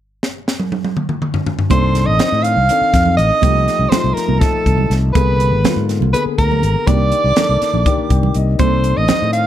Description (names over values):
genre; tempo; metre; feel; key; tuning
electric jazz fusion; 244 BPM (eighths); 7/8; straight; C dorian; A4 = 440 Hz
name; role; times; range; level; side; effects
crisp fusion drum kit; drums; 0.2-9.4 s; hi-hat, kick drum, snare drum, toms; -18 LUFS; equal; none
clear soprano saxophone; melody; 1.7-9.5 s; A4 to F5; -18 LUFS; right 1 dB; slapback echo, plate reverb
bright silver concert flute; second line; 1.7-9.5 s; A5 to F6; -24 LUFS; right 11 dB; plate reverb
dark baby grand piano; accompaniment; 1.7-9.5 s; D3 to G5; -22 LUFS; left 8 dB; plate reverb
fretless electric bass; bass; 1.7-9.4 s; Ab1 to A2; -16 LUFS; equal; none
congas; percussion; 1.7-9.3 s; none; -24 LUFS; right 16 dB; none
room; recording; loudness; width
light reverb; dark, warm production, faint mains hum; -13 LUFS; side -11 dB against mid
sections
0.0-1.7 A section; 1.7-9.5 B section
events
drum fill 0.2-1.7; grand piano fill 7.9-8.6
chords
0.0 N.C.; 1.7 Cm69; 3.4 F9/C; 5.2 Bb7b9; 6.9 Ebmaj7/C; 8.6 Cm69